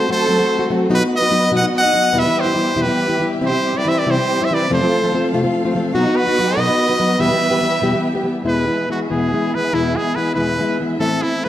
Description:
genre	mexican folk, mariachi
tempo	95 BPM (dotted quarters)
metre	6/8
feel	rubato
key	E minor, E major from 8.5 s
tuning	A4 = 439 Hz
part	brilliant trumpet	melody	0.0-11.5 s	E4 to F#5	-19 LUFS	right 1 dB	none
part	clear studio violin section	second line	0.0-8.0 s	D#4 to D#5	-23 LUFS	right 3 dB	none
part	nylon-string guitar	accompaniment	0.0-11.5 s	E2 to G4	-18 LUFS	left 2 dB	none
part	rich studio violin section	sustained chords	0.0-11.5 s	A3 to F5	-28 LUFS	equal	none
room	wet recital hall reverb, RT60 1.6 s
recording	none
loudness	-15 LUFS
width	side -12 dB against mid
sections	0.0-8.5 A section; 8.5-11.5 B section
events	none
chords	0.0 F#dim; 0.9 B; 2.1 Em; 3.4 C; 4.7 F; 5.9 B; 7.2 Em; 8.5 E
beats	0.28 | 0.90 1.52 | 2.15 2.78 | 3.42 4.07 | 4.70 5.33 | 5.95 6.57 | 7.19 7.82 | 8.46 9.10 | 9.73 10.36 | 10.99

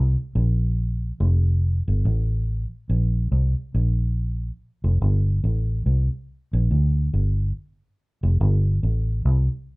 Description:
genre	reggae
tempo	71 BPM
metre	4/4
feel	swing 59% on 16ths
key	F major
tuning	A4 = 440 Hz
part	vintage muted fingered electric bass	solo	0.0-9.5 s	F1 to D2	-20 LUFS	equal	none
room	moderate small room reverb, RT60 0.5 s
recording	rough home demo mix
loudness	-20 LUFS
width	side -27 dB against mid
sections	0.0-4.6 A section; 4.6-9.8 B section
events	none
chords	none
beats	0.34 | 1.19 2.04 2.88 3.73 | 4.58 5.42 6.27 7.12 | 7.97 8.81

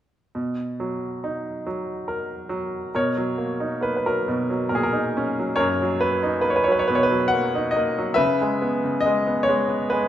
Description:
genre	classical, lyrical solo piano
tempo	69 BPM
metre	3/4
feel	rubato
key	B major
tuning	A4 = 440 Hz
part	bright baby grand piano	solo	0.3-10.1 s	F#2 to F#5	-21 LUFS	equal	none
room	moderate recital hall reverb, RT60 1.3 s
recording	minimal, uncompressed stereo recording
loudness	-21 LUFS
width	side -11 dB against mid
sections	0.3-2.9 A section; 2.9-10.1 B section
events	none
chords	0.3 Bmaj7; 2.9 Bmaj9; 8.2 C#m7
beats	| 0.35 1.23 2.07 | 2.94 3.83 4.71 | 5.59 6.46 7.32 | 8.19 9.05 9.93

